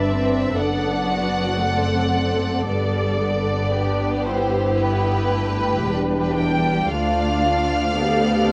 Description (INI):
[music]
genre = classical, slow romantic movement for string orchestra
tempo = 57 BPM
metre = 4/4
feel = rubato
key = unclear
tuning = A4 = 440 Hz
[part]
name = warm symphonic violin section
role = melody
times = 0.0-8.5 s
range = B4 to G5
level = -27 LUFS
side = equal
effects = none
[part]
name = warm symphonic violin section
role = second line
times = 0.0-8.5 s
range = F4 to D5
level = -28 LUFS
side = equal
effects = none
[part]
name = rich symphonic viola section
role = accompaniment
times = 0.0-8.5 s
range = G3 to G4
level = -27 LUFS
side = equal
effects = none
[part]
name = rich symphonic double bass section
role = bass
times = 0.0-8.5 s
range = E1 to D2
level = -28 LUFS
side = equal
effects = none
[part]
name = warm symphonic cello section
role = bass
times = 0.0-8.5 s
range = D2 to G2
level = -29 LUFS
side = equal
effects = none
[sound]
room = moderate large studio reverb, RT60 0.8 s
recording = worn, warbling old tape, cassette tape, warbly pitch drift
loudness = -21 LUFS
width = mono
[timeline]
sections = 0.0-8.5 A section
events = none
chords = 0.0 G; 0.6 D7/F#; 2.7 G; 6.9 Bm7b5/D